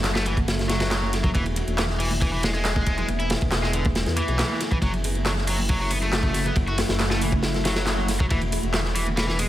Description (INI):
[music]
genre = breakbeat, breaks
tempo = 138 BPM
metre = 4/4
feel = straight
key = F# minor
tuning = A4 = 440 Hz
[part]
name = deep dark ambient pad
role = sustained chords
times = 0.0-9.5 s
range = A3 to G#4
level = -31 LUFS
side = left 1 dB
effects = chorus, built-in reverb, vintage 12-bit sampler grit, sidechain pumping
[part]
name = dark detuned saw bass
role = bass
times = 0.0-9.5 s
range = E1 to E2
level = -26 LUFS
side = equal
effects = tube saturation
[part]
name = crunchy breakbeat drum kit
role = drums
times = 0.0-9.5 s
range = hi-hat, kick drum, ride cymbal, snare drum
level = -25 LUFS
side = equal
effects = none
[part]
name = house drum kit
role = drums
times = 0.0-9.5 s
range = handclaps, hi-hat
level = -32 LUFS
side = equal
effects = overdrive
[part]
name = cranked stack guitar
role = riff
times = 0.2-9.4 s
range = D3 to F#4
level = -28 LUFS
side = equal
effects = overdrive, tube saturation, vintage 12-bit sampler grit, tape echo
[part]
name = congas and bongos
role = percussion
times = 0.4-9.5 s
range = none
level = -35 LUFS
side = right 3 dB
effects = none
[sound]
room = small room ambience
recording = none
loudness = -21 LUFS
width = side -13 dB against mid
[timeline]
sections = 0.0-9.5 A section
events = none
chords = 0.0 F#m7; 1.3 E; 4.8 F#m7; 8.3 E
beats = 0.04 0.48 0.91 | 1.35 1.78 2.22 2.65 | 3.09 3.52 3.96 4.39 | 4.83 5.26 5.69 6.13 | 6.56 7.00 7.43 7.87 | 8.30 8.74 9.17